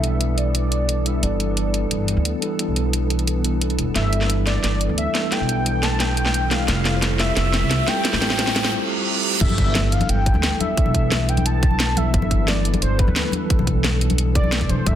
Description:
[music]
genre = liquid drum and bass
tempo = 176 BPM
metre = 4/4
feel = straight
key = G mixolydian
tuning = A4 = 441 Hz
[part]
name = warm velvety synth lead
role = melody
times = 0.0-15.0 s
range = B4 to A5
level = -26 LUFS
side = left 1 dB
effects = chorus, digital delay
[part]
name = mellow tine electric piano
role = accompaniment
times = 0.0-15.0 s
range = G3 to C5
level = -26 LUFS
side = equal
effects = medium stereo tremolo, digital delay
[part]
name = glassy FM pad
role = sustained chords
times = 0.0-15.0 s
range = E3 to A4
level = -30 LUFS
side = equal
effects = ensemble chorus, built-in reverb, sidechain pumping
[part]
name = upright bass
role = bass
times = 0.0-15.0 s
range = E1 to D2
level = -22 LUFS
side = equal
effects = none
[part]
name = garage drum kit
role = drums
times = 0.0-14.9 s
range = crash cymbal, hi-hat, snare drum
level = -24 LUFS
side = equal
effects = none
[part]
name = riser, reverse cymbal and impact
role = sound effects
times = 6.1-10.8 s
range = none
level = -28 LUFS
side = right 3 dB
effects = none
[part]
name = electronic kick drum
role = drums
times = 9.4-14.9 s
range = none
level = -20 LUFS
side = equal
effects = none
[part]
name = congas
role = percussion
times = 9.5-14.8 s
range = none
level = -28 LUFS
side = left 4 dB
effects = none
[sound]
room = light reverb, digital ambience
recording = dense, heavily limited modern master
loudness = -18 LUFS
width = side -10 dB against mid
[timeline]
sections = 0.0-9.4 A section; 9.4-15.0 B section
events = build-up 0.0-9.4; drum fill 4.0-8.7; riser 6.1-8.7; reverse cymbal 8.7-9.4; drop 9.4-15.0; impact 9.4-10.8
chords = 0.0 G69; 6.7 Fmaj9; 9.4 G69

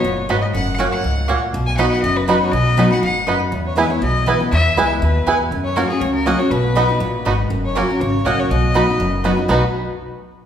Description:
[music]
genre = bluegrass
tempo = 241 BPM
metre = 4/4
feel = swing 54% on 8ths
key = B major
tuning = A4 = 436 Hz
[part]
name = clear fiddle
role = melody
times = 0.0-9.6 s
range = G#4 to G#5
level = -22 LUFS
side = left 3 dB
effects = none
[part]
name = picked steel-string acoustic guitar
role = accompaniment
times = 0.0-9.6 s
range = E2 to F#4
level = -20 LUFS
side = left 1 dB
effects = none
[part]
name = upright bass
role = bass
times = 0.0-9.6 s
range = F#1 to F#2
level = -21 LUFS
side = equal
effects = none
[part]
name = bluegrass banjo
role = melody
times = 0.3-9.6 s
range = B3 to G#4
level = -24 LUFS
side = right 3 dB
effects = none
[part]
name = mandolin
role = stabs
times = 0.3-9.6 s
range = A#3 to B5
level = -23 LUFS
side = right 3 dB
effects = none
[sound]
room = wet recital hall reverb, RT60 1.7 s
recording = recorded in a church or concert hall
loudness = -15 LUFS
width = side -9 dB against mid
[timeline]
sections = 0.0-7.5 A section; 7.5-9.5 B section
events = none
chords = 0.0 B; 0.5 F#; 1.5 B; 3.5 E; 5.5 F#; 6.5 B; 7.5 F#; 8.5 B

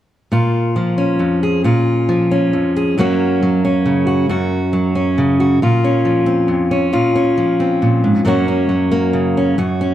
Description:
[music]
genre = folk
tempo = 136 BPM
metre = 3/4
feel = straight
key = Bb minor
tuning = A4 = 440 Hz
[part]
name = fingerpicked steel-string acoustic guitar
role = solo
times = 0.3-9.9 s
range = F2 to Ab4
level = -13 LUFS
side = equal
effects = none
[sound]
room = moderate large studio reverb, RT60 1.3 s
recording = dark, warm production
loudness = -13 LUFS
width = side -12 dB against mid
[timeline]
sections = 0.3-5.6 A section; 5.6-9.9 B section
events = none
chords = 0.3 Bbm; 3.0 Gb; 5.6 Bbmadd9; 8.2 Gb

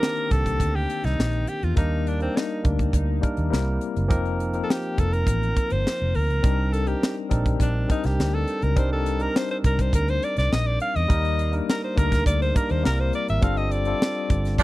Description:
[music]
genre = lush 1970s-style soul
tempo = 103 BPM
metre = 4/4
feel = straight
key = C dorian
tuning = A4 = 440 Hz
[part]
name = bright alto saxophone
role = melody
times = 0.0-14.6 s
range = C4 to F5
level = -28 LUFS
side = equal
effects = tape echo
[part]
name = tine electric piano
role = accompaniment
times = 0.0-14.6 s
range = Eb3 to Bb4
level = -28 LUFS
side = left 3 dB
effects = medium stereo tremolo
[part]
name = tight funk drum kit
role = drums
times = 0.0-14.6 s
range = hi-hat, kick drum, snare drum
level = -23 LUFS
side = equal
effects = none
[part]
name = vintage muted fingered electric bass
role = bass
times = 0.3-14.6 s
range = F1 to G2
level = -24 LUFS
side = equal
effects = none
[part]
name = warm horn section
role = stabs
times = 14.6 s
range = F3 to D4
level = -19 LUFS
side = right 6 dB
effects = none
[sound]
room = little or no reverb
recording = dry, close 1970s-style studio recording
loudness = -21 LUFS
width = side -17 dB against mid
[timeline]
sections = 0.0-14.6 A section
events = alto saxophone solo 0.0-14.6; band accent 13.4-14.6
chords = 0.0 Cm9; 1.8 Ebmaj7; 3.5 C7; 4.1 F7sus4; 6.4 Cm9; 11.1 Ebmaj7; 12.8 C7; 13.4 G9sus4

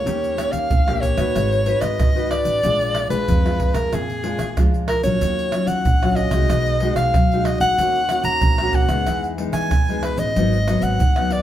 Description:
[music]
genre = samba and choro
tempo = 93 BPM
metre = 4/4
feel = straight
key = Eb minor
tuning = A4 = 440 Hz
[part]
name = clear soprano saxophone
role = melody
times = 0.0-11.4 s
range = Ab4 to Bb5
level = -21 LUFS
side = equal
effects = slapback echo
[part]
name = nylon-string guitar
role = accompaniment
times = 0.0-11.4 s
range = Ab2 to Cb5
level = -24 LUFS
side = left 2 dB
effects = none
[part]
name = upright bass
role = bass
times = 0.0-11.4 s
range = Ab1 to F2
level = -25 LUFS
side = equal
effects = none
[part]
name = tube shaker, surdo, pandeiro and tamborim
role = percussion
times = 0.1-11.4 s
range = none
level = -21 LUFS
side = right 1 dB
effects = none
[sound]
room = wet studio reverb, RT60 0.8 s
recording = band playing live in one room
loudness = -17 LUFS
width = side -12 dB against mid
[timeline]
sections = 0.0-11.4 A section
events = none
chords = 0.1 Eb7; 1.4 Abm7; 2.6 Bb7; 5.2 Ebm9; 6.5 B6; 7.8 Ebm7; 9.1 Emaj7; 10.4 Abm7

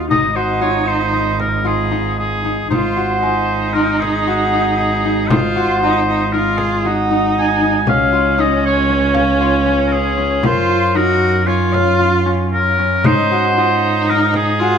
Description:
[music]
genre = contemporary instrumental, chamber music in an uneven meter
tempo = 116 BPM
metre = 5/4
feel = straight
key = Ab mixolydian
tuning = A4 = 440 Hz
[part]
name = warm viola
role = second line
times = 0.0-14.8 s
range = Db4 to Gb4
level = -19 LUFS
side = right 1 dB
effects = none
[part]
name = concert harp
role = arpeggios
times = 0.0-14.8 s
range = Db4 to Gb4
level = -19 LUFS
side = left 2 dB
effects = none
[part]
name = warm double bass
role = bass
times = 0.0-14.8 s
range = Ab1 to Ab2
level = -20 LUFS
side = right 2 dB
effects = none
[part]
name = celesta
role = texture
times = 0.0-14.8 s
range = Bb4 to C6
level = -26 LUFS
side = left 6 dB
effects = none
[part]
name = clear oboe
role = melody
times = 0.1-14.8 s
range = Ab4 to Ab5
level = -18 LUFS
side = equal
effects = none
[part]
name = frame drum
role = percussion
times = 0.1-14.6 s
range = none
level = -20 LUFS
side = left 2 dB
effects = none
[sound]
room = moderate studio reverb, RT60 0.8 s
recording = minimal, uncompressed stereo recording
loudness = -13 LUFS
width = side -7 dB against mid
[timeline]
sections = 0.0-2.7 A section; 2.7-14.8 B section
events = none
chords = 0.1 Ab5; 7.9 Db; 10.4 Gbmaj7; 13.0 Ab7

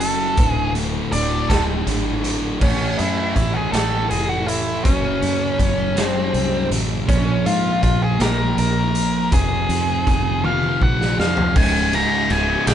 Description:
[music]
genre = quiet-loud alternative rock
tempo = 54 BPM (dotted quarters)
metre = 6/8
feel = straight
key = unclear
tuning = A4 = 444 Hz
[part]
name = octave-fuzz lead guitar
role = melody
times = 0.0-12.7 s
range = Db4 to Bb5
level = -22 LUFS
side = equal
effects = distortion
[part]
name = thick fuzz guitar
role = riff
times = 0.0-12.7 s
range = Db2 to Bb3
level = -22 LUFS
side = equal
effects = distortion
[part]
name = fingered electric bass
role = bass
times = 0.0-12.7 s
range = Db1 to Ab2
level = -24 LUFS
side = equal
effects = none
[part]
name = raw garage drum kit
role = drums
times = 0.0-12.7 s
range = crash cymbal, hi-hat, kick drum, ride cymbal, snare drum, toms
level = -22 LUFS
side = equal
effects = none
[sound]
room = moderate large studio reverb, RT60 1.2 s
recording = band playing live in one room, nothing above 10.9 kHz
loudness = -17 LUFS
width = side -10 dB against mid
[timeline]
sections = 0.0-2.6 A section; 2.6-11.6 B section; 11.6-12.7 C section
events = lead electric guitar solo 0.0-2.6; drum fill 10.4-11.6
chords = 0.4 D5; 2.6 A5; 4.9 Gbm; 7.1 Bb5; 9.3 Fm; 11.6 Db5

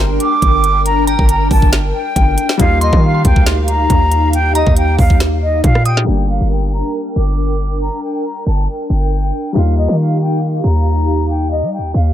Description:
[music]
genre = hip hop, trap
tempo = 138 BPM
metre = 4/4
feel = half-time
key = G minor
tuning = A4 = 439 Hz
[part]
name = felt-muted upright piano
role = accompaniment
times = 0.0-12.1 s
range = G3 to G5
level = -24 LUFS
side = left 6 dB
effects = none
[part]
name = hollow soft pad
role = sustained chords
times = 0.0-12.1 s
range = D4 to G5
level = -21 LUFS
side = left 1 dB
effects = ensemble chorus
[part]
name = hard-hitting 808-style bass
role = bass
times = 0.0-12.1 s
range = G1 to G3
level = -15 LUFS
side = equal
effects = none
[part]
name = mellow concert flute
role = melody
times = 0.2-12.1 s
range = Eb5 to D6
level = -19 LUFS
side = equal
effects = none
[part]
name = trap drum kit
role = drums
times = 0.2-12.1 s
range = hi-hat, kick drum, rim click, snare drum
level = -13 LUFS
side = equal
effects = none
[part]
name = glassy synth bell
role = second line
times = 1.1-6.1 s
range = Bb5 to Eb6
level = -24 LUFS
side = right 1 dB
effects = chorus, digital delay
[sound]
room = little or no reverb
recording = low-pass filter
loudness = -12 LUFS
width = side -11 dB against mid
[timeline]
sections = 0.0-6.1 A section; 6.1-12.1 B section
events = filter sweep 6.1-12.1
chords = 0.0 Gm; 2.6 Ebadd9; 6.1 Gm; 9.6 Ebadd9

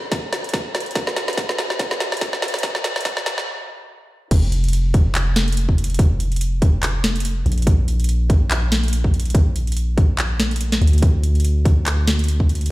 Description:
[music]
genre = future bass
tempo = 143 BPM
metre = 4/4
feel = swing 56% on 16ths, half-time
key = unclear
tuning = A4 = 441 Hz
[part]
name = electronic kick drum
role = drums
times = 0.1-12.5 s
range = none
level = -16 LUFS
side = equal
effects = none
[part]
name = trap drum kit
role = drums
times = 0.1-12.7 s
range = crash cymbal, handclaps, hi-hat, snare drum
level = -23 LUFS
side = equal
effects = high-pass filter on hats, high-pass filter on snare, high-pass filter on cymbals
[part]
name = long sustained 808-style bass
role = bass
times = 4.3-12.7 s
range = F1 to D2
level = -18 LUFS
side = equal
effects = tube saturation, sidechain pumping
[sound]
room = light reverb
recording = played on a big sound system in a bare room, large studio reverb, high-pass filter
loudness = -17 LUFS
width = side -18 dB against mid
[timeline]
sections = 0.0-4.3 A section; 4.3-12.7 B section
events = build-up 0.0-4.3; drum fill 0.0-3.5; stop 3.5-4.3; drop 4.3-12.7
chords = none

